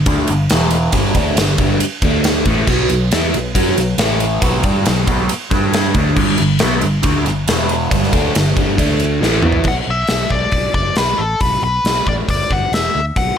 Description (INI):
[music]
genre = hard rock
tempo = 138 BPM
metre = 4/4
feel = straight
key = B minor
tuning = A4 = 440 Hz
[part]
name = overdriven semi-hollow guitar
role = riff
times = 0.0-9.7 s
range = E2 to G4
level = -17 LUFS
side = equal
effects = phaser
[part]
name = fingered electric bass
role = bass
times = 0.0-13.3 s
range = E1 to G2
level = -20 LUFS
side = equal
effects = none
[part]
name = gated 80s drum kit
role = drums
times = 0.1-13.3 s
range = crash cymbal, hi-hat, kick drum, ride cymbal, snare drum, toms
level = -17 LUFS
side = equal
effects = none
[part]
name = nasal lead guitar with a parked wah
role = melody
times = 9.7-13.4 s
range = A4 to F#5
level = -18 LUFS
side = left 2 dB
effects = overdrive, slapback echo
[sound]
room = little or no reverb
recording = none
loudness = -13 LUFS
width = side -8 dB against mid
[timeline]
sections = 0.0-9.7 A section; 9.7-13.4 B section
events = drum fill 9.2-9.7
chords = 0.0 G5; 0.5 E5; 0.9 G5; 2.0 D5; 2.5 A5; 2.7 B5; 4.0 A5; 4.4 Bm; 5.5 G5; 6.0 D5; 6.2 G5; 7.5 E5; 7.9 G5; 8.8 D5; 9.2 Asus2; 9.7 Bm; 12.3 G5; 12.7 Dsus2/E